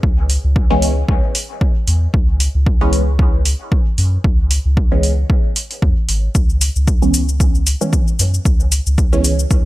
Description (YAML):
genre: dub techno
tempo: 114 BPM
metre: 4/4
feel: swing 56% on 16ths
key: C# minor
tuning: A4 = 439 Hz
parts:
  - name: soft dub sub bass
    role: bass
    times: 0.0-9.6 s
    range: G#1 to F#2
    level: -16 LUFS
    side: equal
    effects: sidechain pumping
  - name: electronic kick drum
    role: drums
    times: 0.0-9.6 s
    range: none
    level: -15 LUFS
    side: equal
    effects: overdrive
  - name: electronic hi-hat and shaker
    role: drums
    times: 0.3-9.6 s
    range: none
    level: -20 LUFS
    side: equal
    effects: overdrive
  - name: filtered dub chord stab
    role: stabs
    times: 0.7-9.3 s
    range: E3 to C#4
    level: -21 LUFS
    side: right 1 dB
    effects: phaser, vintage 12-bit sampler grit, sidechain pumping, dub echo
room: little or no reverb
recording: none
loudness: -13 LUFS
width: side -17 dB against mid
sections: 0.0-9.7 A section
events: none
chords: 0.0 C#m7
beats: | 0.03 0.56 1.08 1.61 | 2.14 2.66 3.19 3.72 | 4.24 4.77 5.30 5.82 | 6.35 6.88 7.40 7.93 | 8.45 8.98 9.51